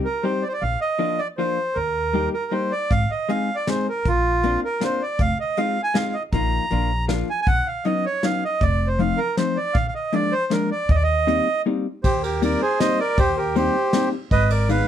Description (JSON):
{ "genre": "musette waltz", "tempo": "158 BPM", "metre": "3/4", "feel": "straight", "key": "Eb major", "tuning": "A4 = 440 Hz", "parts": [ { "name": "accordion", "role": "melody", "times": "0.0-14.9 s", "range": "F4 to Bb5", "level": "-22 LUFS", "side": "right 2 dB", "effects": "none" }, { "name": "vintage hollow-body jazz guitar", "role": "accompaniment", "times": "0.0-14.9 s", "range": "Eb3 to Ab4", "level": "-24 LUFS", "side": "left 4 dB", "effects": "none" }, { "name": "upright bass", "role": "bass", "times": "0.6-14.8 s", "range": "F1 to Eb2", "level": "-24 LUFS", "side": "equal", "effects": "none" }, { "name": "soft brush drum kit", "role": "drums", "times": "2.9-14.8 s", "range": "hi-hat, kick drum, ride cymbal, snare drum", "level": "-24 LUFS", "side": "equal", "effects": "none" } ], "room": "light reverb", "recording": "dark, warm production", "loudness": "-19 LUFS", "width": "side -10 dB against mid", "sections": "0.0-12.0 A section; 12.0-14.9 B section", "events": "break 11.7-12.0", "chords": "0.0 Cm; 0.6 Bb; 1.8 Eb; 2.9 Ab; 4.1 Bbadd9; 5.2 Fm7; 6.3 Bbsus4; 6.7 Bb; 7.5 Badd9; 8.6 F7; 9.8 Bb7; 10.9 Eb6; 14.3 Abm", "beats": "0.25 | 0.63 1.01 1.39 | 1.77 2.15 2.53 | 2.92 3.30 3.68 | 4.06 4.44 4.82 | 5.20 5.58 5.96 | 6.34 6.72 7.10 | 7.48 7.86 8.24 | 8.62 9.00 9.38 | 9.76 10.14 10.52 | 10.90 11.28 11.66 | 12.05 12.43 12.81 | 13.19 13.56 13.94 | 14.32 14.70" }